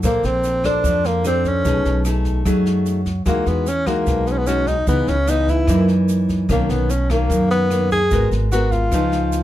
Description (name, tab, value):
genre	bossa nova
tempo	148 BPM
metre	4/4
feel	straight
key	unclear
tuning	A4 = 440 Hz
part	breathy tenor saxophone	melody	0.0-9.4 s	A#3 to G#4	-20 LUFS	equal	none
part	nylon-string guitar	accompaniment	0.0-9.4 s	F#2 to B#4	-22 LUFS	left 1 dB	none
part	upright bass	bass	0.0-9.4 s	G#1 to F#2	-20 LUFS	equal	none
part	jazz brush drum kit	drums	0.0-9.4 s	kick drum, rim click, snare drum	-26 LUFS	equal	none
part	egg shaker	percussion	0.0-9.4 s	none	-38 LUFS	right 8 dB	none
room	moderate studio reverb, RT60 0.6 s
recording	dark, warm production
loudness	-16 LUFS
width	side -13 dB against mid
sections	0.0-9.4 A section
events	none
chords	0.0 A#maj9; 1.6 B13; 3.3 Emaj9; 4.9 C#m9; 5.7 F#6; 6.5 Bmaj9; 8.1 G#m9; 8.9 C#9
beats	| 0.04 0.44 0.84 1.25 | 1.65 2.05 2.46 2.86 | 3.26 3.67 4.07 4.48 | 4.88 5.28 5.69 6.09 | 6.50 6.90 7.31 7.71 | 8.12 8.52 8.93 9.33